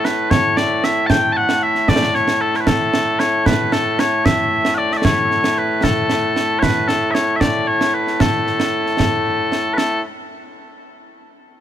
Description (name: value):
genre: scottish traditional, Scottish pipe music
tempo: 76 BPM (dotted quarters)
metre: 6/8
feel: straight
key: A major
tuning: A4 = 441 Hz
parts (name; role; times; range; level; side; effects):
- mellow small bagpipes; melody; 0.0-10.0 s; A2 to A5; -16 LUFS; left 1 dB; none
- concert snare drum and concert bass drum; drums; 0.0-10.0 s; none; -20 LUFS; right 2 dB; none
room: light reverb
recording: none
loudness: -14 LUFS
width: side -10 dB against mid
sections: 0.0-9.8 A section; 9.8-11.4 B section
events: none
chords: none